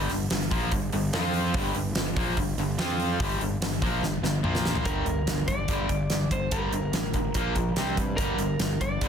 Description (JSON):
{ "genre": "hard rock", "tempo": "145 BPM", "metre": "4/4", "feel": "straight", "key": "G minor", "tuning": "A4 = 440 Hz", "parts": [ { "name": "distorted electric guitar", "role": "riff", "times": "0.0-9.1 s", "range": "G2 to F4", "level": "-31 LUFS", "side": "left 11 dB", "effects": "distortion" }, { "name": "overdriven electric guitar", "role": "riff", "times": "0.0-9.1 s", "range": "G2 to F4", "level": "-32 LUFS", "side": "right 10 dB", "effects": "none" }, { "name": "fuzz fingered electric bass", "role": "bass", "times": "0.0-9.1 s", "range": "G1 to G2", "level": "-31 LUFS", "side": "equal", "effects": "overdrive" }, { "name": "huge arena drum kit", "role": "drums", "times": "0.1-9.1 s", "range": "hi-hat, kick drum, snare drum, toms", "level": "-29 LUFS", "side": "equal", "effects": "none" }, { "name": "lightly driven lead guitar", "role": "melody", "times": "4.9-9.1 s", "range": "Bb4 to D5", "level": "-32 LUFS", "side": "right 1 dB", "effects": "none" } ], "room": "little or no reverb", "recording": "dense, heavily limited modern master", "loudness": "-24 LUFS", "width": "side -7 dB against mid", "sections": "0.0-4.9 A section; 4.9-9.1 B section", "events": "drum fill 4.0-4.9", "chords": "0.0 Gm; 1.1 F5; 1.6 Gm; 2.8 F5; 3.2 Gm; 4.4 Bb5; 4.9 Gm; 7.4 Bb5; 7.8 C5; 8.2 Gm" }